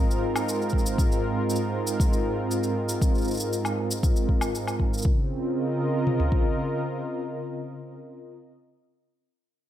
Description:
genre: folktronica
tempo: 118 BPM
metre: 4/4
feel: straight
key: Db major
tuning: A4 = 440 Hz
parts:
  - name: warm analog pad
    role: sustained chords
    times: 0.0-8.5 s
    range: Ab2 to Eb5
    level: -26 LUFS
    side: right 1 dB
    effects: chorus, tremolo
  - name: cabasa and woodblock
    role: drums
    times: 0.1-5.1 s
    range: none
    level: -33 LUFS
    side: left 1 dB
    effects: none
  - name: organic electronic drum kit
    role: drums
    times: 0.7-6.4 s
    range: kick drum, toms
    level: -23 LUFS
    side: equal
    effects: none
room: light reverb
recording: none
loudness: -23 LUFS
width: side -12 dB against mid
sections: 0.0-5.0 A section; 5.0-9.1 B section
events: none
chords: 0.0 Ab; 5.0 Db

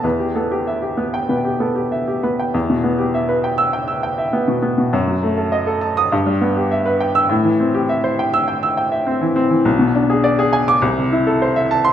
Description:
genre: classical, virtuoso piano study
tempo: 101 BPM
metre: 4/4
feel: rubato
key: E minor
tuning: A4 = 439 Hz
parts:
  - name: bright baby grand piano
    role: solo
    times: 0.0-11.9 s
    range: B1 to E6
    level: -15 LUFS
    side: equal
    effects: none
room: wet recital hall reverb, RT60 1.6 s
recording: none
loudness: -15 LUFS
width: side -10 dB against mid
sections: 0.0-2.5 A section; 2.5-11.9 B section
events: none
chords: 0.0 Em; 4.9 D#dim/F#; 6.1 Em/G; 7.3 Am7; 9.7 G#dim/B; 10.8 Am/C

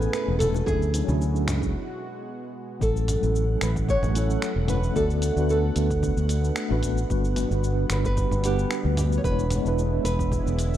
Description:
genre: sunset chillout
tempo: 112 BPM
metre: 4/4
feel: swing 54% on 16ths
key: unclear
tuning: A4 = 440 Hz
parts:
  - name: nylon-string guitar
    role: melody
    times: 0.0-10.8 s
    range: G4 to C#5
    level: -29 LUFS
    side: right 1 dB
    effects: vintage 12-bit sampler grit, digital delay
  - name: mellow tine electric piano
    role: accompaniment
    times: 0.0-10.8 s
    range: F#3 to F#5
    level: -29 LUFS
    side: moving between left 5 dB and right 6 dB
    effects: medium stereo tremolo, auto-pan, digital delay
  - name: lush unison pad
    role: sustained chords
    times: 0.0-10.8 s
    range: B2 to G#5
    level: -36 LUFS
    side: right 2 dB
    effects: chorus
  - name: fretless electric bass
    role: bass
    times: 0.0-10.8 s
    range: E1 to D2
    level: -24 LUFS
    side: equal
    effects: none
  - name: dusty soul sampler-style drum kit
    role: drums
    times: 0.0-10.8 s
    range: finger snaps, hi-hat, shaker, toms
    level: -34 LUFS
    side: equal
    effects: none
  - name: congas and bongos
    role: percussion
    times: 0.4-1.2 s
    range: none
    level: -31 LUFS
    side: left 1 dB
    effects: none
  - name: electronic kick drum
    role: drums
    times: 0.7-10.4 s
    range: none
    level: -30 LUFS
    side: equal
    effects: none
room: light reverb, digital ambience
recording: rough home demo mix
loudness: -22 LUFS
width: side -12 dB against mid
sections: 0.0-2.8 A section; 2.8-10.8 B section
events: break 1.7-2.8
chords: 0.0 Amaj9; 0.7 Dmaj9#11; 1.7 G#m7/B; 2.8 A6; 5.0 D6; 7.1 Gmaj7; 9.2 E7

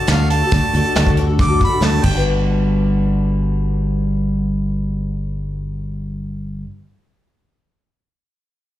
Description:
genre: folk rock and heartland rock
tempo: 137 BPM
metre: 4/4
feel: straight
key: G major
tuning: A4 = 440 Hz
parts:
  - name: bright harmonica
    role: melody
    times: 0.0-2.3 s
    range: F5 to D6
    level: -21 LUFS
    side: right 2 dB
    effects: slapback echo
  - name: picked twelve-string acoustic guitar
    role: accompaniment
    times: 0.0-6.8 s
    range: G2 to B4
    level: -25 LUFS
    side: left 7 dB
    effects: slapback echo
  - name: fingered electric bass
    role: bass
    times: 0.1-6.6 s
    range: G1 to D2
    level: -18 LUFS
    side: equal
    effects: none
  - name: soft brush drum kit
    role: drums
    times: 0.1-2.1 s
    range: crash cymbal, hi-hat, kick drum, snare drum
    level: -19 LUFS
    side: equal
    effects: none
room: little or no reverb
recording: live gig heard through the venue's PA, club reverb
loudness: -15 LUFS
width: side -13 dB against mid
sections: 0.0-2.3 A section; 2.3-5.8 B section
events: harmonica solo 0.0-2.3; drum fill 2.0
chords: 0.0 D; 2.0 Gmaj7

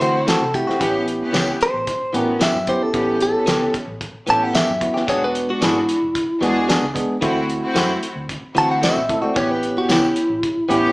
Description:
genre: straight-eighth soul blues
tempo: 112 BPM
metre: 4/4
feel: straight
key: A mixolydian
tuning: A4 = 441 Hz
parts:
  - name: direct-recorded clean electric guitar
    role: melody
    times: 0.0-10.9 s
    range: E4 to A5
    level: -19 LUFS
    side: equal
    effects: none
  - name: bell-like tine electric piano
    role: accompaniment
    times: 0.0-10.9 s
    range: G#3 to A4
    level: -23 LUFS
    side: right 1 dB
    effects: medium stereo tremolo
  - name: clear symphonic string section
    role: sustained chords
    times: 0.0-10.9 s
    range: G#3 to A4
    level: -27 LUFS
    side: equal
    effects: none
  - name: direct-recorded clean electric guitar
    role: stabs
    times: 0.0-10.9 s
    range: E3 to G#4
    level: -23 LUFS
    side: left 1 dB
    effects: none
  - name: vintage muted fingered electric bass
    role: bass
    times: 0.0-10.9 s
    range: E1 to D3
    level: -32 LUFS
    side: equal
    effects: none
  - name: cloth-damped thuddy drum kit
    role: drums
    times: 0.0-10.8 s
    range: hi-hat, kick drum, snare drum, tambourine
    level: -24 LUFS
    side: equal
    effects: none
room: moderate large studio reverb, RT60 0.9 s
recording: band playing live in one room, small speaker sound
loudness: -17 LUFS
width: side -23 dB against mid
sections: 0.0-10.9 A section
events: clean electric guitar solo 0.0-10.9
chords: 0.0 D9; 0.8 A9; 5.1 E9; 7.2 D9; 9.4 A9

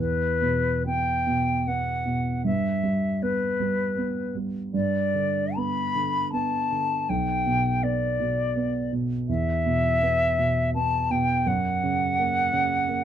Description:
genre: classical, romantic duo for flute and grand piano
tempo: 65-87 BPM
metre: 3/4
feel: rubato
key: E minor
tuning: A4 = 438 Hz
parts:
  - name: silver concert flute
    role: melody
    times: 0.0-13.0 s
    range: B4 to B5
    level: -25 LUFS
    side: left 2 dB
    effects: none
  - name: dark concert grand piano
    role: accompaniment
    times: 0.0-13.0 s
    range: B1 to B3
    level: -26 LUFS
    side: right 2 dB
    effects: none
room: moderate small room reverb, RT60 0.5 s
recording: dark, warm production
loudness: -22 LUFS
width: side -9 dB against mid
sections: 0.0-13.0 A section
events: none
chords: 0.0 E5; 2.5 Em/G; 4.7 G; 7.1 N.C.; 9.3 E5; 11.5 F#

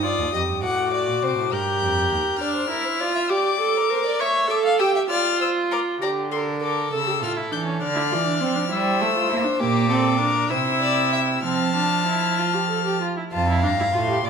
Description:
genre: classical, baroque-style fugue for string quartet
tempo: 67 BPM (dotted quarters)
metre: 6/8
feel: straight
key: F major from 9.6 s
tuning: A4 = 440 Hz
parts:
  - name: warm violin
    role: melody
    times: 0.0-14.3 s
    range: A5 to G6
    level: -25 LUFS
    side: left 7 dB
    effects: none
  - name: rich violin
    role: second line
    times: 0.0-14.3 s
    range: G4 to A5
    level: -27 LUFS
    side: left 3 dB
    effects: none
  - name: warm viola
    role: accompaniment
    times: 0.0-14.3 s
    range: Bb3 to C#5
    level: -24 LUFS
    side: right 3 dB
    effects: none
  - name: rich cello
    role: bass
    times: 0.0-2.2, 6.0-14.3 s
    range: Eb2 to Bb3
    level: -26 LUFS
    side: right 4 dB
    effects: none
room: wet recital hall reverb, RT60 1.3 s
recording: minimal, uncompressed stereo recording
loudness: -19 LUFS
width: side -6 dB against mid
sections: 0.0-6.0 A section; 6.0-13.3 B section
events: none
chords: 0.0 Cm (rootless); 0.6 D7/A; 1.5 Gm; 2.4 Dm; 3.3 Gm; 4.2 A7; 5.1 Dm/F; 6.0 Bbmaj13/D; 6.9 A; 7.8 Dm; 8.7 C/G; 9.6 Gm/Bb; 10.5 C; 11.4 F

